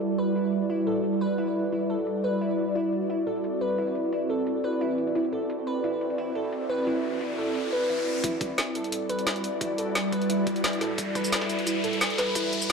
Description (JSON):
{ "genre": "liquid drum and bass", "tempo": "175 BPM", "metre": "4/4", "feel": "straight", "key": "E minor", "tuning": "A4 = 441 Hz", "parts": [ { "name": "ethereal airy pad", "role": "sustained chords", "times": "0.0-12.7 s", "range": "G3 to D5", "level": "-28 LUFS", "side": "equal", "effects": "ensemble chorus, built-in reverb" }, { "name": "drum and bass drum kit", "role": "drums", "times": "0.0-12.7 s", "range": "hi-hat, shaker, snare drum", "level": "-29 LUFS", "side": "equal", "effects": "overdrive, high-pass filter on hats, low-pass filter on hats, studio reverb, high-pass filter on perc, low-pass filter on perc, high-pass filter on snare, low-pass filter on snare" }, { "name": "harp-like synth pluck", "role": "arpeggios", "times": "0.2-12.7 s", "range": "E4 to B4", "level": "-29 LUFS", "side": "right 1 dB", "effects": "chorus, digital delay" }, { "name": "riser", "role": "sound effects", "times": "6.3-12.7 s", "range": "none", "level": "-35 LUFS", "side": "left 2 dB", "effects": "none" }, { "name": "electronic kick drum", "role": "drums", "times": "8.2-12.4 s", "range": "none", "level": "-36 LUFS", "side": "left 1 dB", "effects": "overdrive, high-pass filter on kick, studio reverb" } ], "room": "wet lush hall reverb, RT60 1.8 s", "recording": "dark, warm production", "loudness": "-25 LUFS", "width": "side -5 dB against mid", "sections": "0.0-8.2 A section; 8.2-12.7 B section", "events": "filter sweep on ambient pad 0.0-8.2; riser 6.3-8.2, 8.2-12.7; build-up 8.2-12.7", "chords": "0.0 Em9; 2.8 D9; 8.2 Em9", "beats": "| 0.01 0.35 0.70 1.04 | 1.38 1.73 2.07 2.41 | 2.75 3.10 3.44 3.78 | 4.12 4.47 4.81 5.15 | 5.50 5.84 6.18 6.53 | 6.87 7.21 7.55 7.90 | 8.24 8.58 8.93 9.27 | 9.61 9.95 10.30 10.64 | 10.98 11.32 11.67 12.01 | 12.35 12.70" }